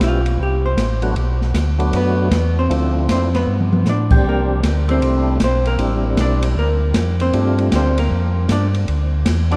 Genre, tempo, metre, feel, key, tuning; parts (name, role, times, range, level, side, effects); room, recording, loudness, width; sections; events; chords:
soul jazz organ trio; 156 BPM; 4/4; swing 65% on 8ths; G mixolydian; A4 = 440 Hz
percussive tonewheel organ; melody; 0.0-9.6 s; F3 to G4; -26 LUFS; equal; slow rotary speaker, overdrive, chorus vibrato
vintage hollow-body jazz guitar; accompaniment; 0.0-9.6 s; Bb3 to D5; -25 LUFS; equal
mellow tonewheel organ; bass; 0.0-9.6 s; A1 to A2; -20 LUFS; equal; slow rotary speaker
open jazz drum kit; drums; 0.0-9.6 s; crash cymbal, hi-hat, kick drum, ride cymbal, snare drum, toms; -25 LUFS; equal
moderate cathedral reverb, RT60 5.3 s; in a vast, echoing space; -17 LUFS; mono
0.0-9.6 A section
hollow-body jazz guitar solo 0.0-9.6; drum fill 3.5-3.9
0.4 Csus2; 1.2 Bm7; 2.7 Dm7; 3.5 Gadd9; 4.2 C69; 5.8 Am11; 6.6 Bbadd9/D; 7.3 G9sus4